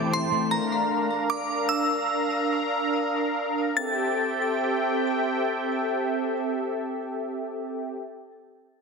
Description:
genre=dream pop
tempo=70-79 BPM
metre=4/4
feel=straight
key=A phrygian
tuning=A4 = 440 Hz
part: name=glassy synth bell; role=melody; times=0.0-8.3 s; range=Bb5 to A6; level=-29 LUFS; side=right 1 dB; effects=chorus, phaser, ping-pong delay
part: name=warm analog pad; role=sustained chords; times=0.0-7.9 s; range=C4 to Bb5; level=-26 LUFS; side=right 1 dB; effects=chorus
part: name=electric guitar at the edge of break-up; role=arpeggios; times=0.0-1.1 s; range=E3 to G4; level=-29 LUFS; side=left 7 dB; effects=ensemble chorus, ping-pong delay
room=moderate plate reverb, RT60 1.9 s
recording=heavily compressed radio sound, multiband compression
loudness=-24 LUFS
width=side -4 dB against mid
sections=0.0-3.7 A section; 3.7-7.2 B section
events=slowing down 0.0-3.7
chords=0.5 Bb; 3.7 Am7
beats=| 0.50 1.28 2.08 2.90 | 3.74 4.60 5.46 6.32

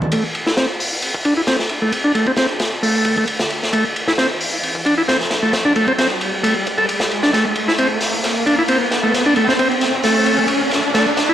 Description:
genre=breakbeat, breaks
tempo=133 BPM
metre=4/4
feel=swing 54% on 16ths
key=A minor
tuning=A4 = 440 Hz
part: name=noise sweep and riser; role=sound effects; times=0.0-11.3 s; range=none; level=-23 LUFS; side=equal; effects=none
part: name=combo organ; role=riff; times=0.1-11.3 s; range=A3 to A4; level=-17 LUFS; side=equal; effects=low-pass filter, tape echo
part: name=crunchy breakbeat drum kit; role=drums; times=0.1-11.3 s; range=hi-hat, kick drum, ride cymbal, snare drum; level=-20 LUFS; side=equal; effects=high-pass filter on kick, high-pass filter on cymbals, high-pass filter on hats, high-pass filter on snare, high-pass filter on room
room=moderate plate reverb, RT60 1.7 s, small room ambience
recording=dry, gritty hardware recording, vinyl crackle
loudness=-15 LUFS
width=side -10 dB against mid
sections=0.1-11.3 A section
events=build-up 0.1-11.3; riser 0.1-11.3; filter sweep on transistor combo organ 0.1-11.3; drum fill 7.3-11.3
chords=none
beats=| 0.12 0.57 1.02 1.47 | 1.92 2.37 2.83 3.28 | 3.73 4.18 4.63 5.08 | 5.53 5.98 6.43 6.89 | 7.34 7.79 8.24 8.69 | 9.14 9.59 10.04 10.49 | 10.95

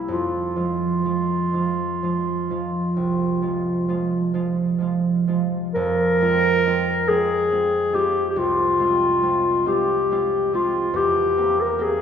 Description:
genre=classical, romantic duo for clarinet and harp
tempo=41-48 BPM (dotted quarters)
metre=12/8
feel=rubato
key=F minor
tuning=A4 = 440 Hz
part: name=dark clarinet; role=melody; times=0.0-12.0 s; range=E4 to Bb4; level=-20 LUFS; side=left 1 dB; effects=none
part: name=concert harp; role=accompaniment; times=0.0-12.0 s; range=C2 to G4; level=-24 LUFS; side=right 3 dB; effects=none
room=wet scoring stage reverb, RT60 1.9 s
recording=heard from further back in the room, nothing above 7.5 kHz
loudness=-19 LUFS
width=side -8 dB against mid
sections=0.0-5.8 A section; 5.8-12.0 B section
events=none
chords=0.1 Fm; 11.0 C7/E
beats=| 0.11 1.55 2.98 4.35 | 5.76 7.08 8.37 9.66 | 10.95

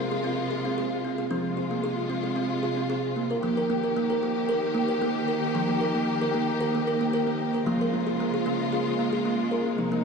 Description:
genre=world meditative, meditative tuned percussion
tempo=113 BPM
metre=4/4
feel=straight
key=unclear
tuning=A4 = 440 Hz
part: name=warm studio string section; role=sustained chords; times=0.0-10.0 s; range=C3 to G4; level=-29 LUFS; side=left 3 dB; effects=shimmer reverb
part: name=kalimba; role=arpeggios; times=0.0-10.0 s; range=F3 to Bb4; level=-26 LUFS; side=right 2 dB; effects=ping-pong delay, shimmer reverb
room=wet recital hall reverb, RT60 1.5 s, studio ambience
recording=none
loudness=-24 LUFS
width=side -5 dB against mid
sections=0.0-3.4 A section; 3.4-10.0 B section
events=none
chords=0.0 Fm; 3.4 Eb; 7.7 Db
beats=0.24 0.77 | 1.30 1.83 2.37 2.90 | 3.43 3.96 4.49 5.01 | 5.54 6.07 6.60 7.13 | 7.66 8.19 8.72 9.25 | 9.78

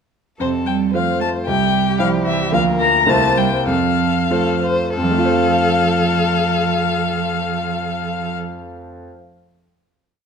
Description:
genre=quick classical-period movement for piano quartet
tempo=90-115 BPM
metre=2/4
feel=rubato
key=F major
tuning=A4 = 440 Hz
part: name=rich violin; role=melody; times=0.4-8.3 s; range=C5 to Bb5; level=-20 LUFS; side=left 7 dB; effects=none
part: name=rich cello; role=second line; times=0.4-8.3 s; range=C3 to Bb3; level=-22 LUFS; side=right 10 dB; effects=none
part: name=warm violin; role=second line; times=0.4-8.3 s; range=G4 to C5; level=-25 LUFS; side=left 2 dB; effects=none
part: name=bright concert grand piano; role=accompaniment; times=0.4-9.2 s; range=C2 to F5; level=-20 LUFS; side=equal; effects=none
room=moderate recital hall reverb, RT60 1.4 s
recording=close, detailed microphones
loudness=-15 LUFS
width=side -6 dB against mid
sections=0.4-5.0 A section; 5.0-7.6 final chord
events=slowing down 2.0-5.0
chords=0.4 F; 1.5 C; 2.5 Bb/D; 3.1 C7; 3.7 F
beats=| 0.40 0.94 | 1.48 2.00 | 2.53 3.08 | 3.67 4.31 | 4.96 5.62 | 6.28 6.92

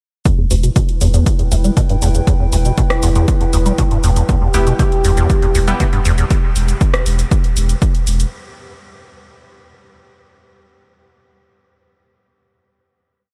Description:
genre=acid house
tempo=119 BPM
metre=4/4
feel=straight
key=E minor pentatonic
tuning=A4 = 440 Hz
part: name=acid bass, square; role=riff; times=0.3-6.2 s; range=D2 to G3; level=-20 LUFS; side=equal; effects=tube saturation, subtle chorus, vintage 12-bit sampler grit, sidechain pumping, tape echo
part: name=electronic kick drum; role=drums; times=0.3-7.9 s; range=none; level=-18 LUFS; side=equal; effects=overdrive
part: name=punchy analog drum machine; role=drums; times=0.3-8.3 s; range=hi-hat, rim click, shaker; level=-26 LUFS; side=equal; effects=overdrive
part: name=warbly tape-like pad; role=texture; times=0.7-6.3 s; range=E4 to G5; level=-28 LUFS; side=equal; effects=chorus, built-in reverb, sidechain pumping
part: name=warm sub bass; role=bass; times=0.5-8.2 s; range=E1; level=-18 LUFS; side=equal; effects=sidechain pumping
part: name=warm analog pad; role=sustained chords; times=4.3-6.3 s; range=G4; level=-26 LUFS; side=equal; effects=chorus, sidechain pumping
part: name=band-passed chord stab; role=stabs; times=4.5-5.9 s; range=B3 to G4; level=-29 LUFS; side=equal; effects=chorus, tape echo
room=light reverb, digital ambience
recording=none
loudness=-15 LUFS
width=mono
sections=0.3-8.3 groove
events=filter sweep on acid bass 0.3-6.3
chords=0.3 Em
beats=| 0.26 0.76 1.26 1.77 | 2.27 2.78 3.28 3.79 | 4.29 4.79 5.30 5.80 | 6.31 6.81 7.32 7.82

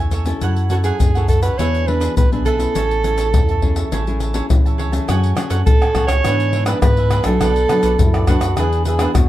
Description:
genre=samba and choro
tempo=103 BPM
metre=4/4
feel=straight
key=A major, F# minor from 5.1 s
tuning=A4 = 440 Hz
part: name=cavaquinho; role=accompaniment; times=0.0-9.1 s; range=D4 to A5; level=-27 LUFS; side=right 5 dB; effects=none
part: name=nylon-string guitar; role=accompaniment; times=0.0-9.3 s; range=F#2 to A4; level=-24 LUFS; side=left 3 dB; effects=none
part: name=pure sine sub bass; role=bass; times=0.0-9.3 s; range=A1 to G#2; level=-19 LUFS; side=equal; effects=none
part: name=tube shaker, pandeiro, surdo and tamborim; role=percussion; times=0.1-9.3 s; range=none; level=-18 LUFS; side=left 1 dB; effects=none
part: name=breathy soprano saxophone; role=melody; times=0.7-8.4 s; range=F#4 to C#5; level=-20 LUFS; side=right 3 dB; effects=none
part: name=breathy trombone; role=second line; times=8.0-9.3 s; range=E4 to G#4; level=-23 LUFS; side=left 2 dB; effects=none
room=light reverb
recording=dark, warm production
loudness=-14 LUFS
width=side -14 dB against mid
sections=0.0-5.1 A section; 5.1-9.3 B section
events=none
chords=0.4 F#m7; 1.6 E7; 2.8 Amaj7; 5.1 F#madd9; 6.2 E7/G#; 7.4 Bm7; 8.6 E7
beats=| 0.42 1.00 1.59 2.17 | 2.75 3.34 3.92 4.50 | 5.08 5.67 6.25 6.83 | 7.42 8.00 8.58 9.16

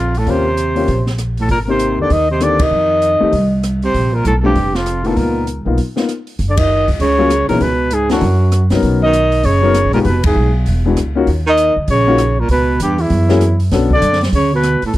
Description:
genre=jazz, small-group swing and bop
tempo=196 BPM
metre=4/4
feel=swing 62% on 8ths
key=F# major from 6.4 s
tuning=A4 = 441 Hz
part: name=mellow trumpet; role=melody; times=0.0-14.9 s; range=E4 to D#5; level=-17 LUFS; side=left 1 dB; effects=slapback echo
part: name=breathy baritone saxophone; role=second line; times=0.0-15.0 s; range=E2 to D#3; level=-19 LUFS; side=right 4 dB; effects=none
part: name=upright bass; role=bass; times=0.0-15.0 s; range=E1 to C3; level=-16 LUFS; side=equal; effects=none
part: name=open jazz drum kit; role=drums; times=0.1-15.0 s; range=hi-hat, kick drum, ride cymbal, rim click, snare drum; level=-22 LUFS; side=equal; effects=none
part: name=warm grand piano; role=accompaniment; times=0.3-13.9 s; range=E3 to A#4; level=-17 LUFS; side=left 5 dB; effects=none
room=studio ambience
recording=dry, close 1970s-style studio recording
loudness=-12 LUFS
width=side -15 dB against mid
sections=0.0-6.4 A section; 6.4-15.0 B section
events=band accent 2.6, 6.5, 10.2; break 5.8-6.4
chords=0.3 Eb7; 1.5 Abmaj9; 2.7 F7(no3); 3.9 Bbmaj7(no3); 5.2 Db13; 6.4 F#sus2; 7.6 C#m7; 8.2 F#; 8.8 Bmaj7; 10.1 Fdim; 10.7 E9; 11.3 D#7(no3); 12.5 C#m7b5; 13.1 F#7; 13.7 Bm9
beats=| 0.27 0.58 0.88 1.19 | 1.50 1.80 2.11 2.41 | 2.72 3.03 3.33 3.64 | 3.94 4.25 4.55 4.86 | 5.17 5.47 5.78 6.08 | 6.39 6.69 7.00 7.30 | 7.61 7.92 8.22 8.53 | 8.83 9.14 9.44 9.75 | 10.05 10.36 10.66 10.97 | 11.28 11.58 11.89 12.19 | 12.50 12.80 13.11 13.41 | 13.72 14.03 14.33 14.64 | 14.95

